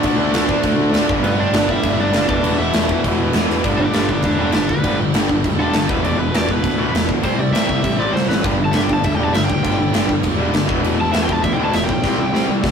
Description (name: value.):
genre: punk rock.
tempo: 200 BPM.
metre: 4/4.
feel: straight.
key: unclear.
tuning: A4 = 441 Hz.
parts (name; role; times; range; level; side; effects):
distorted electric guitar; riff; 0.0-12.7 s; E2 to D4; -22 LUFS; right 4 dB; distortion.
tight distorted guitar; riff; 0.0-12.7 s; E2 to D4; -24 LUFS; left 4 dB; distortion.
tight distorted guitar; riff; 0.0-12.7 s; E2 to D4; -26 LUFS; left 1 dB; distortion.
fuzz picked electric bass; bass; 0.0-12.7 s; E1 to D2; -23 LUFS; equal; overdrive.
big rock drum kit; drums; 0.0-12.7 s; crash cymbal, kick drum, snare drum; -20 LUFS; equal; none.
cranked stack guitar; melody; 1.2-12.5 s; B3 to A5; -23 LUFS; left 1 dB; overdrive.
room: moderate booth ambience, RT60 0.3 s.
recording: rough rehearsal-room recording.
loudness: -15 LUFS.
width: side -7 dB against mid.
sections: 0.0-3.6 A section; 3.6-12.7 B section.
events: drum fill 3.5, 8.1-8.4, 12.0-12.7; overdriven electric guitar solo 3.6-12.7.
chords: 0.0 D5; 1.1 G; 2.3 E5; 3.6 G; 5.9 E5; 7.2 C; 8.4 G5; 10.7 E5; 12.0 C5.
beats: | 0.04 0.34 0.64 0.94 | 1.24 1.53 1.83 2.13 | 2.43 2.73 3.03 3.33 | 3.63 3.93 4.23 4.53 | 4.83 5.14 5.44 5.74 | 6.04 6.34 6.64 6.94 | 7.24 7.54 7.84 8.14 | 8.44 8.74 9.04 9.34 | 9.64 9.94 10.24 10.54 | 10.84 11.14 11.44 11.74 | 12.04 12.34 12.64.